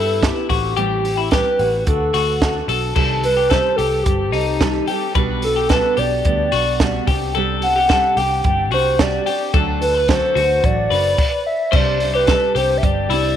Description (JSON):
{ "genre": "jangly indie pop", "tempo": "110 BPM", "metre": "4/4", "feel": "straight", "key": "unclear", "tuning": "A4 = 439 Hz", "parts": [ { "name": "warbly nostalgic lead", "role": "melody", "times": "0.0-13.4 s", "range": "G4 to G5", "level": "-19 LUFS", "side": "equal", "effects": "chorus, tape echo" }, { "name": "fingerpicked steel-string acoustic guitar", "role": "accompaniment", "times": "0.0-13.4 s", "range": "A2 to B4", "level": "-26 LUFS", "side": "right 11 dB", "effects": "none" }, { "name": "twelve-string electric guitar", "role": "arpeggios", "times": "0.0-13.4 s", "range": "Eb4 to C5", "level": "-22 LUFS", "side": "left 12 dB", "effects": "none" }, { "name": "vintage muted picked electric bass", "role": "bass", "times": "0.0-13.4 s", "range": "F#1 to G2", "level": "-24 LUFS", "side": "equal", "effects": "none" }, { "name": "compact cocktail drum kit", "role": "drums", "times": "0.2-13.2 s", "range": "crash cymbal, hi-hat, kick drum, snare drum", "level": "-21 LUFS", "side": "right 1 dB", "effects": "none" } ], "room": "light reverb, small room ambience", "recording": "1960s-style stereo with parts hard left and right", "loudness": "-15 LUFS", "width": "side -10 dB against mid", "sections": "0.0-3.0 A section; 3.0-11.7 B section; 11.7-13.4 C section", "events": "stop 11.2-11.7", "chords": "0.0 G; 0.5 Am7; 1.9 D; 3.0 Cm6; 5.2 Gmaj7/B; 7.1 Csus2; 9.5 D; 11.7 Csus2" }